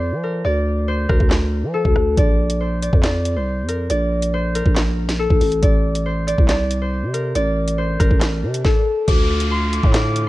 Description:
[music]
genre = hip hop, drill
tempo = 139 BPM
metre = 4/4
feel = half-time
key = D minor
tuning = A4 = 435 Hz
[part]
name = concert harp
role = melody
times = 0.0-10.3 s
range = A4 to D6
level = -22 LUFS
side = left 1 dB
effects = ping-pong delay
[part]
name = growling 808-style bass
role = bass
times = 0.0-10.3 s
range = A1 to F3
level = -21 LUFS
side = equal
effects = none
[part]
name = drill drum kit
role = drums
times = 1.1-10.3 s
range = handclaps, hi-hat, kick drum, rim click, snare drum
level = -17 LUFS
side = equal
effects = none
[part]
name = swell and downlifter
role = sound effects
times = 8.0-10.3 s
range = none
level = -31 LUFS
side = equal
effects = none
[part]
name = clear brass ensemble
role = sustained chords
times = 9.1-10.3 s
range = D3 to F4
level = -29 LUFS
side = right 1 dB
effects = none
[sound]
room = little or no reverb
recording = worn, warbling old tape, cassette tape, warbly pitch drift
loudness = -16 LUFS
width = side -17 dB against mid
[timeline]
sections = 0.0-9.1 A section; 9.1-10.3 B section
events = break 0.0-2.2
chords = 0.0 Dm; 2.2 Bb; 5.6 Am; 9.1 Dm

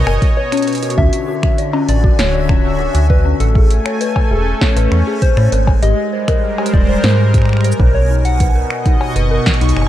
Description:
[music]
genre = IDM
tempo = 99 BPM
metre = 4/4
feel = straight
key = unclear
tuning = A4 = 440 Hz
[part]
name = soft struck synth lead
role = melody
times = 0.0-9.9 s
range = A4 to Gb5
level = -22 LUFS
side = left 1 dB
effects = chorus, digital delay
[part]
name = warm analog pad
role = sustained chords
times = 0.0-9.9 s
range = Cb3 to Db6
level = -21 LUFS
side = equal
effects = chorus, tremolo, sidechain pumping
[part]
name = metallic FM bass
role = bass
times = 0.0-9.9 s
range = D1 to A2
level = -14 LUFS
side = equal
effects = none
[part]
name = backwards swelling texture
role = texture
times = 0.0-9.9 s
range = Ab5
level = -32 LUFS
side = left 1 dB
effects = built-in reverb
[part]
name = dark detuned synth bell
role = arpeggios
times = 0.1-9.7 s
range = Db4 to D5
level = -22 LUFS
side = left 4 dB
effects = chorus, phaser, ping-pong delay
[part]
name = electro analog drum machine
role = drums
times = 0.1-9.9 s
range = cabasa, cowbell, finger snaps, hi-hat, snare drum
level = -22 LUFS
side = equal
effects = none
[part]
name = electronic kick drum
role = drums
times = 0.2-9.6 s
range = none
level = -14 LUFS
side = equal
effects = none
[sound]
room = little or no reverb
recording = dark, warm production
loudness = -12 LUFS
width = side -12 dB against mid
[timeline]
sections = 0.0-9.9 A section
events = break 0.4-1.0; drum fill 0.7-1.0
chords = 0.0 Cbadd9; 1.0 Dmaj9; 3.4 Amaj7; 5.5 Abmaj9; 7.9 Cbmaj9

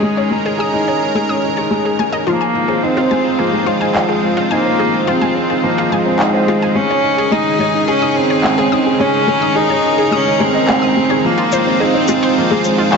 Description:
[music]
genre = piano and strings electronica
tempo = 107 BPM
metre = 4/4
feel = straight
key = Ab major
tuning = A4 = 440 Hz
[part]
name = rich cello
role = melody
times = 0.0-13.0 s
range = Ab3 to Eb4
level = -16 LUFS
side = right 1 dB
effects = low-pass filter, ping-pong delay
[part]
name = lush unison pad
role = sustained chords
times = 0.0-13.0 s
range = Db3 to Bb4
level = -19 LUFS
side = right 2 dB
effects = chorus
[part]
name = dark upright piano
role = riff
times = 0.0-13.0 s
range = F3 to Eb5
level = -18 LUFS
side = left 1 dB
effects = ping-pong delay
[part]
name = analog pluck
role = arpeggios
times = 0.2-13.0 s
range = F4 to Eb6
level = -23 LUFS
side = left 3 dB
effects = chorus, ping-pong delay
[part]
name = electronic handclaps and shaker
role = drums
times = 4.0-13.0 s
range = none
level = -20 LUFS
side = equal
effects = none
[sound]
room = moderate lush hall reverb, RT60 3.0 s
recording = low-pass filter, nothing above 7.8 kHz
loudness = -12 LUFS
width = side -5 dB against mid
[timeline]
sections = 0.0-2.3 A section; 2.3-13.0 B section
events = build-up 2.3-13.0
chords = 0.0 Dbsus2; 2.3 Ab6; 6.8 Dbsus2; 11.2 Ab6

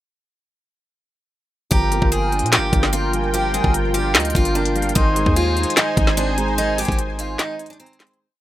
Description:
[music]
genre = hip hop, trap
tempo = 148 BPM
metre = 4/4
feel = half-time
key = G phrygian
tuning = A4 = 440 Hz
[part]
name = picked steel-string acoustic guitar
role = melody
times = 1.7-8.2 s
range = C4 to Ab4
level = -24 LUFS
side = equal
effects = ping-pong delay
[part]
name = reedy silver concert flute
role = second line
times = 1.7-8.2 s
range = F5 to C6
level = -29 LUFS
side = left 2 dB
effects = ping-pong delay
[part]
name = dark concert grand piano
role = accompaniment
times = 1.7-8.2 s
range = Eb3 to Eb5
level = -26 LUFS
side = right 4 dB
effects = none
[part]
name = warm analog pad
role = sustained chords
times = 1.7-8.2 s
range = Eb4 to Ab5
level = -25 LUFS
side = equal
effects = chorus
[part]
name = hard-hitting 808-style bass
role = bass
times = 1.7-7.4 s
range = G1 to Bb2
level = -22 LUFS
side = equal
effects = none
[part]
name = trap drum kit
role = drums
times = 1.7-8.2 s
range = handclaps, hi-hat, kick drum, snare drum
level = -19 LUFS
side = equal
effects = overdrive
[sound]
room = little or no reverb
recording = rough home demo mix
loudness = -16 LUFS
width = side -14 dB against mid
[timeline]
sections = 1.7-8.2 hook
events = fade-out 6.6-8.2; break 7.4-8.2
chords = 1.7 Gm7; 5.0 Ab

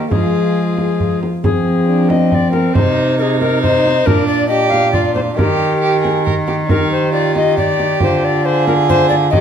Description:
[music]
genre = classical, renaissance-style consort dance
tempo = 137 BPM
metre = 3/4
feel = straight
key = F dorian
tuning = A4 = 437 Hz
[part]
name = rich violin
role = second line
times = 0.0-9.4 s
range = C4 to Bb4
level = -19 LUFS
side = right 5 dB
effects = none
[part]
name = warm trombone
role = accompaniment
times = 0.0-9.4 s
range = Ab3 to G4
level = -20 LUFS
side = equal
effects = none
[part]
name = rich cello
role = bass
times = 0.0-9.4 s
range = Bb2 to F3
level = -18 LUFS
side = equal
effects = none
[part]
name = alto recorder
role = melody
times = 0.1-9.4 s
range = Ab4 to F5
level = -18 LUFS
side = left 6 dB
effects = none
[part]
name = frame drum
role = percussion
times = 0.1-9.4 s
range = none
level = -19 LUFS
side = right 2 dB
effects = none
[sound]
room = moderate stone room reverb, RT60 1.4 s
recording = none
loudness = -12 LUFS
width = side -8 dB against mid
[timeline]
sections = 0.0-1.4 A section; 1.4-9.4 A section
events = none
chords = 0.1 Fm; 2.8 Cm; 4.1 Bb; 5.4 Eb; 8.0 Dm7b5

